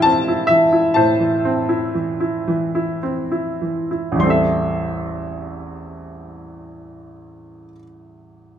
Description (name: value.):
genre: classical, lyrical solo piano.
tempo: 49-68 BPM.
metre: 3/4.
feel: rubato.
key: A minor.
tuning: A4 = 440 Hz.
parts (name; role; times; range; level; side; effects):
clear baby grand piano; solo; 0.0-8.6 s; A1 to C6; -17 LUFS; equal; none.
room: moderate studio reverb, RT60 0.6 s.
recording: none.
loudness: -16 LUFS.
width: side -9 dB against mid.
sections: 0.0-4.2 A section; 4.2-7.8 B section.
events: slowing down 0.0-4.2.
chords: 0.0 Am7.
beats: 0.05 | 0.96 1.94 3.02 | 4.20 5.39 6.57.